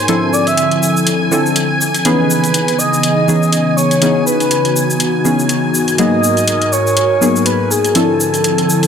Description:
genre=deep house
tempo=122 BPM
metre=4/4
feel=swing 57% on 16ths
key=C# minor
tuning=A4 = 439 Hz
part: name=breathy flute-like synth lead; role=melody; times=0.0-8.9 s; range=G#4 to E5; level=-17 LUFS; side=equal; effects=lush chorus, tape echo
part: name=airy breathy pad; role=sustained chords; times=0.0-8.9 s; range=G#2 to A#4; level=-17 LUFS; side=equal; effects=chorus
part: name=deep mellow chord stab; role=stabs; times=0.0-8.9 s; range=E3 to A4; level=-17 LUFS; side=left 1 dB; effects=chorus, tape echo
part: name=soft string machine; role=texture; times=0.0-8.9 s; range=G#5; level=-22 LUFS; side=equal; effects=ensemble chorus
part: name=electronic hi-hat and shaker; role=drums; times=0.1-8.9 s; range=none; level=-19 LUFS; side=equal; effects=overdrive
room=moderate lush hall reverb, RT60 2.2 s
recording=none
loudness=-11 LUFS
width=side -7 dB against mid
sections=0.0-8.9 A section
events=filter sweep on analog synth pad 0.0-8.9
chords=0.1 Dm9; 2.0 C#m9; 5.7 G#m9; 8.0 Dm9

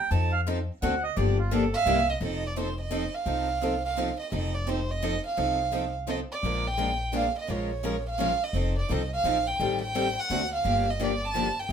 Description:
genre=acoustic string swing (jazz manouche)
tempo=171 BPM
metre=3/4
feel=swing 62% on 8ths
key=F mixolydian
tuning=A4 = 439 Hz
part: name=accordion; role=second line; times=0.0-2.1 s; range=F4 to A5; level=-29 LUFS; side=right 4 dB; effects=none
part: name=picked steel-string acoustic guitar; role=accompaniment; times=0.1-11.7 s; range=C3 to Bb4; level=-32 LUFS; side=left 6 dB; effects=none
part: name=picked steel-string acoustic guitar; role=accompaniment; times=0.1-11.7 s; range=C3 to Bb4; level=-34 LUFS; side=right 5 dB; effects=none
part: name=upright bass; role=bass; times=0.1-11.7 s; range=F1 to F2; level=-30 LUFS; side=left 1 dB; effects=none
part: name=warm violin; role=melody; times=1.7-11.7 s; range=C5 to A5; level=-28 LUFS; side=right 3 dB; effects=none
room=moderate studio reverb, RT60 0.5 s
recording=minimal, uncompressed stereo recording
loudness=-25 LUFS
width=side -8 dB against mid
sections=0.0-2.2 A section; 2.2-11.7 B section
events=accordion solo 0.0-2.2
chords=0.1 F7; 0.8 D7; 1.2 Gm7; 1.9 C7; 2.2 F7; 6.4 Bb7; 7.5 Bbm7; 8.5 F7; 9.6 Am7b5; 10.3 D7; 10.7 Gm7

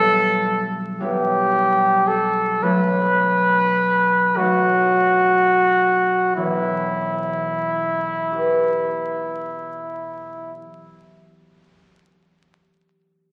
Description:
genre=classical, romantic duo for trumpet and harp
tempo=28-40 BPM (dotted quarters)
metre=12/8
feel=rubato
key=E minor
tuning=A4 = 436 Hz
part: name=warm trumpet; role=melody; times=0.0-10.6 s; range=E4 to B4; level=-20 LUFS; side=equal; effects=none
part: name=concert harp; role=accompaniment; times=0.0-12.5 s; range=E1 to B4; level=-26 LUFS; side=equal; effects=none
room=wet scoring stage reverb, RT60 1.8 s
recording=very old 78 rpm record, vinyl crackle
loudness=-19 LUFS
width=mono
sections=0.0-6.4 A section; 6.4-13.3 B section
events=slowing down 0.0-6.4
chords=0.0 Em/B; 2.6 B7; 6.4 Em

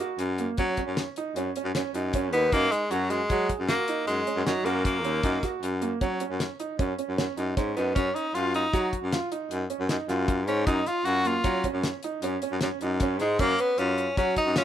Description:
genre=progressive instrumental, band music in an uneven meter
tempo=155 BPM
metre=7/4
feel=straight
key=F# major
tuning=A4 = 440 Hz
part: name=edgy tenor saxophone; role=melody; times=0.0-14.6 s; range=F#3 to F#4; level=-26 LUFS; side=left 1 dB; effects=none
part: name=warm baby grand piano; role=arpeggios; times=0.0-14.6 s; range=A#3 to G#4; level=-31 LUFS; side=right 7 dB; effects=none
part: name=damped 70s drum kit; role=drums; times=0.0-14.6 s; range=hi-hat, kick drum, snare drum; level=-30 LUFS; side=left 1 dB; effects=none
part: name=raspy baritone saxophone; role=bass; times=0.2-14.6 s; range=D#2 to F#3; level=-28 LUFS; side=left 2 dB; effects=none
room=light reverb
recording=minimal, uncompressed stereo recording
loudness=-24 LUFS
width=side -10 dB against mid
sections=0.0-14.6 A section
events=none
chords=0.0 F#6; 8.0 A#m/F# (rootless)

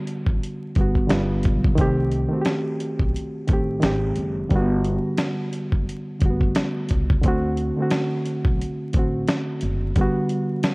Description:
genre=lo-fi hip hop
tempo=88 BPM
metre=4/4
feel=swing 58% on 16ths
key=G major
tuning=A4 = 440 Hz
part: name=reed electric piano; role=accompaniment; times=0.0-10.7 s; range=D3 to G4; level=-23 LUFS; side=equal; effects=cassette tape, low-pass filter
part: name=dusty soul sampler-style drum kit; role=drums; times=0.1-10.7 s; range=hi-hat, kick drum, snare drum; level=-22 LUFS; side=equal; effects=none
part: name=upright bass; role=bass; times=0.3-9.9 s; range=F#1 to D2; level=-26 LUFS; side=equal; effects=none
room=light reverb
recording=worn, warbling old tape, cassette tape, vinyl crackle, warbly pitch drift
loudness=-20 LUFS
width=side -28 dB against mid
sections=0.0-10.7 A section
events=none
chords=0.0 Gmaj7; 1.1 G7; 1.8 Cm6; 3.8 Abmaj7; 4.5 Gmaj7; 7.2 D7; 10.0 Gmaj7

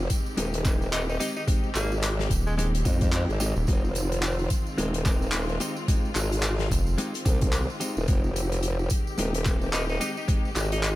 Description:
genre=glitch hop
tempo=109 BPM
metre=4/4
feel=swing 59% on 16ths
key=F minor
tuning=A4 = 440 Hz
part: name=muted studio string section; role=sustained chords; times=0.0-11.0 s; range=Eb3 to G4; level=-34 LUFS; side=left 1 dB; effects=sidechain pumping
part: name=formant-sweep wobble bass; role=bass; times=0.0-11.0 s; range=Eb1 to F2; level=-27 LUFS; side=equal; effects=chorus, tube saturation
part: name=tambourine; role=percussion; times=0.0-11.0 s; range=none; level=-39 LUFS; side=right 4 dB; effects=none
part: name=electronic kick drum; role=drums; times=0.1-10.4 s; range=none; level=-25 LUFS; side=equal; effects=overdrive
part: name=loose indie drum kit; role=drums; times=0.1-11.0 s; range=handclaps, hi-hat, snare drum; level=-32 LUFS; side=left 1 dB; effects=none
part: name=clean electric guitar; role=stabs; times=0.4-10.5 s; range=Ab3 to G4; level=-34 LUFS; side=left 1 dB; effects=sidechain pumping, dub echo
part: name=edgy tenor saxophone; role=melody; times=0.9-2.7, 9.7-10.9 s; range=Ab3 to Eb4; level=-34 LUFS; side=equal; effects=dub echo
part: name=rubbery square bass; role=bass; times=2.3-7.0 s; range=Eb1 to F1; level=-25 LUFS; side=equal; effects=none
room=small room ambience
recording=none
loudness=-23 LUFS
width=side -16 dB against mid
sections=0.0-11.0 A section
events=none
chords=0.0 Fm7

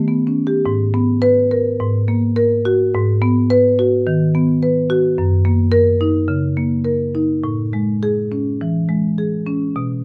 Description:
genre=classical, contemporary piece for solo marimba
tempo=105 BPM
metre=4/4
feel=rubato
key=G# minor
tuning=A4 = 442 Hz
part: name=marimba with medium mallets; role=solo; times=0.0-10.0 s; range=F#2 to B4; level=-17 LUFS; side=equal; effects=none
room=light reverb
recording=none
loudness=-17 LUFS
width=mono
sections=0.7-10.0 A section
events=none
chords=0.0 D#aug7; 0.7 G#madd9; 1.8 F#add9/G#; 2.9 G#m7; 5.2 F#6; 7.4 Amaj7

